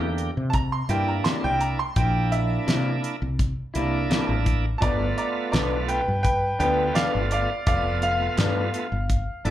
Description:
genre	straight-eighth soul blues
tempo	84 BPM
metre	4/4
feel	straight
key	C mixolydian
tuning	A4 = 440 Hz
part	bright upright piano	second line	0.0-9.5 s	G4 to C6	-26 LUFS	equal	plate reverb, slapback echo
part	bright tonewheel organ	accompaniment	0.0-9.5 s	D3 to D5	-29 LUFS	right 4 dB	slow rotary speaker, overdrive, plate reverb, slapback echo
part	electric guitar through a small old amp	stabs	0.0-9.5 s	G2 to E4	-30 LUFS	left 4 dB	plate reverb, slapback echo
part	woody fretless electric bass	bass	0.0-9.5 s	F1 to C3	-26 LUFS	equal	none
part	damped 70s drum kit	drums	0.2-9.5 s	hi-hat, kick drum, snare drum	-25 LUFS	equal	none
room	light reverb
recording	live gig heard through the venue's PA, club reverb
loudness	-21 LUFS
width	side -12 dB against mid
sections	0.0-9.5 A section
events	upright piano solo 0.0-9.5; tonewheel organ fill 9.1-9.5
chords	0.0 C7; 4.8 G7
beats	0.54 1.25 | 1.97 2.68 3.39 4.11 | 4.82 5.53 6.25 6.96 | 7.67 8.39 9.10

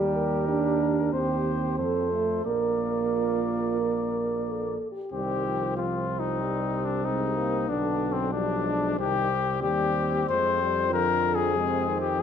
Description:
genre	classical, brass quintet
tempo	93 BPM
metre	4/4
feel	rubato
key	Bb major, C minor from 5.1 s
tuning	A4 = 440 Hz
part	mellow trumpet	melody	0.0-12.2 s	C4 to D5	-28 LUFS	left 8 dB	none
part	mellow flugelhorn	second line	0.0-12.2 s	C4 to Bb4	-32 LUFS	right 6 dB	none
part	mellow French horn	accompaniment	0.0-12.2 s	F3 to Bb4	-33 LUFS	left 3 dB	none
part	mellow trombone	accompaniment	0.0-12.2 s	C3 to D4	-30 LUFS	right 4 dB	none
part	warm tuba	bass	0.0-12.2 s	Bb1 to F2	-32 LUFS	right 2 dB	none
room	moderate scoring stage reverb, RT60 1.5 s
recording	none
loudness	-24 LUFS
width	side -8 dB against mid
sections	0.0-5.1 A section; 5.1-12.2 B section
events	none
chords	0.0 Eb; 1.1 Cm/Eb; 1.8 F; 2.5 Bb; 5.1 Cm; 7.7 G/B; 9.0 Cm; 10.3 Fm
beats	0.49 1.14 1.79 | 2.46 3.13 3.81 4.47 | 5.13 5.77 6.41 7.05 | 7.69 8.33 8.99 9.63 | 10.29 10.93 11.57 12.20

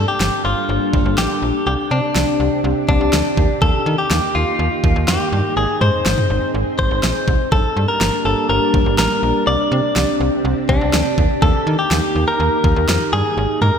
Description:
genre	synth-pop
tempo	123 BPM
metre	4/4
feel	straight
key	unclear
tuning	A4 = 440 Hz
part	direct-recorded clean electric guitar	melody	0.0-13.8 s	D4 to D5	-19 LUFS	left 1 dB	spring reverb
part	soft string machine	sustained chords	0.0-13.8 s	C3 to A5	-22 LUFS	equal	ensemble chorus
part	slap-like FM bass	bass	0.0-13.7 s	G1 to Eb3	-21 LUFS	equal	none
part	pop drum kit	drums	0.2-13.7 s	kick drum, snare drum, toms	-20 LUFS	equal	none
room	moderate scoring stage reverb, RT60 1.7 s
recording	none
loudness	-14 LUFS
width	side -7 dB against mid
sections	0.0-13.8 A section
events	none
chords	0.0 Gmadd9; 1.7 Csus2; 3.6 Eb; 5.6 Ab; 7.5 Gmadd9; 9.5 Csus2; 11.4 Eb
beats	0.20 0.69 1.18 | 1.67 2.15 2.64 3.13 | 3.62 4.11 4.59 5.08 | 5.57 6.06 6.54 7.03 | 7.52 8.01 8.49 8.98 | 9.47 9.96 10.45 10.93 | 11.42 11.91 12.40 12.89 | 13.37

